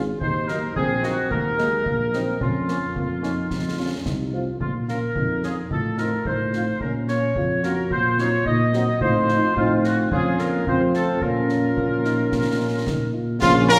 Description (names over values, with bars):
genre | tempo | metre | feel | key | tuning
military-style march for wind band | 109 BPM | 2/4 | straight | Bb minor | A4 = 442 Hz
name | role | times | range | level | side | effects
warm trumpet section | melody | 0.0-13.8 s | Db4 to Bb4 | -29 LUFS | equal | none
clear euphonium | second line | 0.0-13.8 s | F3 to Ab4 | -32 LUFS | equal | none
dark French horn section | accompaniment | 0.0-13.8 s | F3 to Eb4 | -31 LUFS | equal | none
dark tuba | bass | 0.0-13.8 s | Ab1 to Bb2 | -27 LUFS | equal | none
warm woodwind section | second line | 0.2-13.8 s | F4 to Eb5 | -27 LUFS | equal | none
concert bass drum, concert snare drum and clash cymbals | drums | 0.2-13.8 s | none | -32 LUFS | equal | none
mellow hollow piccolo | second line | 13.4-13.8 s | F5 to Bb5 | -26 LUFS | equal | none
mellow trombone section | sustained chords | 13.4-13.8 s | Db4 | -25 LUFS | equal | none
room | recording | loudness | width
wet scoring stage reverb, RT60 1.7 s | recorded in a church or concert hall | -22 LUFS | mono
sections
0.0-13.4 A section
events
none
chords
0.2 Ebm; 2.4 Bbm/F; 3.5 F; 4.6 Bbm; 5.7 F7/A; 6.8 Bbm; 7.9 Cm7b5/Bb; 9.0 F7/A; 10.1 Bbm/F; 10.7 F; 11.2 Bbm